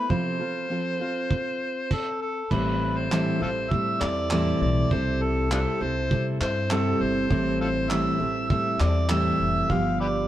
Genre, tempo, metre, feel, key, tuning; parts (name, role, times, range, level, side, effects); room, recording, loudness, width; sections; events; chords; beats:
acoustic pop; 100 BPM; 4/4; swing 55% on 16ths; A4 = 440 Hz
overdriven harmonica; melody; 0.0-10.3 s; D4 to F5; -28 LUFS; equal
fingerpicked steel-string acoustic guitar; accompaniment; 0.0-10.3 s; G2 to A4; -26 LUFS; right 1 dB
cloth-damped thuddy drum kit; drums; 0.1-9.9 s; crash cymbal, handclaps, kick drum; -29 LUFS; right 2 dB
upright bass; bass; 2.5-10.3 s; F1 to C3; -28 LUFS; left 1 dB
light reverb; heard from further back in the room; -22 LUFS; side -13 dB against mid
0.0-2.5 A section; 2.5-10.3 B section
0.1 F/C; 2.5 Am7; 4.9 C6; 7.3 Am7; 9.7 G7
| 0.10 0.70 1.31 1.91 | 2.51 3.11 3.71 4.31 | 4.91 5.51 6.11 6.71 | 7.31 7.91 8.51 9.10 | 9.70